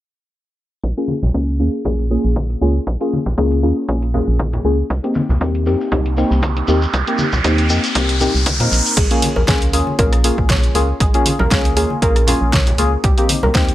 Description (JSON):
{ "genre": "deep house", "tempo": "118 BPM", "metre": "4/4", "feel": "swing 55% on 16ths", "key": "Bb dorian", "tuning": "A4 = 440 Hz", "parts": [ { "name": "organ-like FM bass", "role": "bass", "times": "0.8-13.7 s", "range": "Bb1 to Bb2", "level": "-18 LUFS", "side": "equal", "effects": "sidechain pumping" }, { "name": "deep house drum kit", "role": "drums", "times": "0.8-13.7 s", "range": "crash cymbal, hi-hat, rim click, snare drum", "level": "-21 LUFS", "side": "equal", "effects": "overdrive" }, { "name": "electronic kick drum", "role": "drums", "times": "0.8-13.7 s", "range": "none", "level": "-19 LUFS", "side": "equal", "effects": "overdrive, high-pass filter on kick" }, { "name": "deep mellow chord stab", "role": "stabs", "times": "1.0-13.7 s", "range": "Bb3 to Bb4", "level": "-19 LUFS", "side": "left 1 dB", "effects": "chorus, cassette tape, sidechain pumping, analog delay" }, { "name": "congas", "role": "percussion", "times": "1.1-13.5 s", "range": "none", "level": "-25 LUFS", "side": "left 1 dB", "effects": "sidechain pumping on perc" }, { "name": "shekere", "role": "percussion", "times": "4.9-8.9 s", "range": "none", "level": "-27 LUFS", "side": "left 1 dB", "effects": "none" }, { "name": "riser", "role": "sound effects", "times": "6.0-9.0 s", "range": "none", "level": "-21 LUFS", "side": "right 2 dB", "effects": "none" }, { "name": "warbly dusty pluck", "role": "arpeggios", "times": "9.0-13.6 s", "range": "G4 to Db5", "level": "-24 LUFS", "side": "right 1 dB", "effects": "chorus, sidechain pumping, analog delay" } ], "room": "light reverb", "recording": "low-pass filter", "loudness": "-14 LUFS", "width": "side -14 dB against mid", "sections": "0.8-9.0 A section; 9.0-13.7 B section", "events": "filter sweep on FM bass 0.8-9.0; filter sweep on synth stab 0.8-9.0; filter sweep 0.8-9.0; riser 6.0-9.0", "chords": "0.8 Bbm7; 4.9 Cm7; 9.0 Bbm7; 13.0 Cm7" }